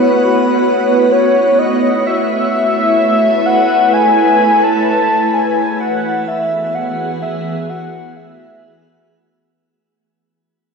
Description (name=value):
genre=ambient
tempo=64 BPM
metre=4/4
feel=straight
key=A major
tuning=A4 = 440 Hz
part: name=warm velvety synth lead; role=melody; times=0.0-9.1 s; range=B4 to A5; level=-14 LUFS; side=left 1 dB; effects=chorus, shimmer reverb, diffuse ambient delay
part: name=glassy FM pad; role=sustained chords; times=0.0-9.6 s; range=E3 to F#5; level=-15 LUFS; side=equal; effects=ensemble chorus, built-in reverb, shimmer reverb
part: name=bowed-like drone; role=drone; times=0.0-9.6 s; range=A3 to E4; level=-24 LUFS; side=right 2 dB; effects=built-in reverb
room=wet concert hall reverb, RT60 2.2 s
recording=none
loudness=-11 LUFS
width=side -5 dB against mid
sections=0.0-9.6 A section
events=fade-in on synth drone 0.0-9.6; fade-out 4.6-9.6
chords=0.0 A; 5.8 Eadd9